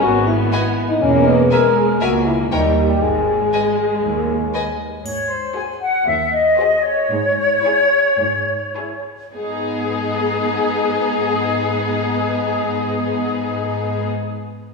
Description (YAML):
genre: cinematic, playful, whimsical film cue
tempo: 102-122 BPM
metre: 4/4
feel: straight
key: G# minor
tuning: A4 = 441 Hz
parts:
  - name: vibraphone with medium mallets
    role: melody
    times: 0.0-4.8 s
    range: B4 to A#5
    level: -21 LUFS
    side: equal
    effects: none
  - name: dark clarinet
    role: second line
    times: 0.0-4.8 s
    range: B3 to A#4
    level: -19 LUFS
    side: left 2 dB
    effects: none
  - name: rich studio viola section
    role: accompaniment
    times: 0.0-14.1 s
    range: G3 to F#4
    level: -24 LUFS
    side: equal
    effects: none
  - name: clear studio double bass section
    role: bass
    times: 0.0-4.5 s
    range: E1 to D#2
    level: -24 LUFS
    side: right 2 dB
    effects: none
  - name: clear symphonic cello section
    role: bass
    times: 0.0-14.1 s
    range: C#2 to G#2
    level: -25 LUFS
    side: right 1 dB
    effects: none
  - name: rich studio violin section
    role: melody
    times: 0.5-14.1 s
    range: G#4 to G#5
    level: -29 LUFS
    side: left 4 dB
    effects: none
  - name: clear studio violin section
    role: second line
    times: 0.5-14.1 s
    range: D#4 to E5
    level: -27 LUFS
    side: left 4 dB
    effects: none
  - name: bright flute section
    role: second line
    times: 5.0-14.1 s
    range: G#4 to G#5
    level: -18 LUFS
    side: left 2 dB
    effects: none
  - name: triangle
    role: percussion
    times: 5.1-6.0 s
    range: none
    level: -39 LUFS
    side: right 1 dB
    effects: none
room: wet scoring stage reverb, RT60 1.8 s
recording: heard from further back in the room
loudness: -16 LUFS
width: side -3 dB against mid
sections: 0.0-5.0 A section; 5.0-9.3 B section; 9.3-14.1 C section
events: slowing down 4.0-9.3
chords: 0.0 G#m; 1.0 E; 2.0 A#dim/C#; 2.5 D#; 3.0 G#5; 5.0 G#7; 7.1 C#m/G#; 9.3 G#m